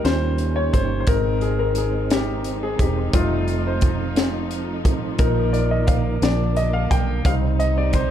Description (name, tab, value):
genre	slow gospel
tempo	58 BPM (dotted quarters)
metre	6/8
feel	straight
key	unclear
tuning	A4 = 442 Hz
part	clear grand piano	accompaniment	0.0-8.1 s	F3 to G5	-24 LUFS	left 4 dB	none
part	percussive tonewheel organ	sustained chords	0.0-8.1 s	F3 to C5	-28 LUFS	right 4 dB	slow rotary speaker, chorus vibrato
part	warm studio string section	sustained chords	0.0-8.1 s	D3 to Eb4	-34 LUFS	right 1 dB	none
part	vintage muted fingered electric bass	bass	0.0-8.1 s	Fb1 to Eb2	-23 LUFS	right 1 dB	none
part	crisp fusion drum kit	drums	0.1-8.1 s	hi-hat, kick drum, snare drum	-22 LUFS	equal	none
room	light reverb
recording	dark, warm production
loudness	-18 LUFS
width	side -10 dB against mid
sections	0.0-8.1 A section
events	grand piano solo 0.0-8.1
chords	0.1 Eb7; 1.1 Ab; 3.1 F7; 5.2 Bbsus4; 6.2 Bb; 7.2 Cm